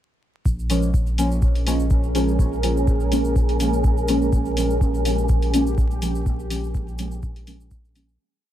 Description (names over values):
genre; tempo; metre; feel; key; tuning
dub techno; 124 BPM; 4/4; swing 54% on 16ths; Bb dorian; A4 = 441 Hz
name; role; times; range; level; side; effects
deep dark ambient pad; sustained chords; 1.4-8.2 s; Db4 to Bb4; -27 LUFS; equal; chorus, built-in reverb, sidechain pumping
soft dub sub bass; bass; 0.5-8.2 s; Bb1; -24 LUFS; equal; sidechain pumping
electronic kick drum; drums; 0.5-7.8 s; none; -21 LUFS; equal; none
cabasa; percussion; 0.5-8.2 s; none; -41 LUFS; right 4 dB; none
wind-like tuned noise texture; texture; 1.7-8.2 s; Ab3; -33 LUFS; right 5 dB; built-in reverb, sidechain pumping
deep mellow chord stab; stabs; 0.7-8.2 s; F3 to Db4; -25 LUFS; equal; chorus, phaser, sidechain pumping, dub echo
electronic hi-hat; drums; 0.7-8.1 s; none; -31 LUFS; left 2 dB; none
room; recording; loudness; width
light reverb, digital ambience; dry, gritty hardware recording, vinyl crackle; -19 LUFS; side -12 dB against mid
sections
0.5-8.2 groove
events
filter sweep on synth stab 0.5-8.2; fade-out 5.6-8.2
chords
0.5 Bbm7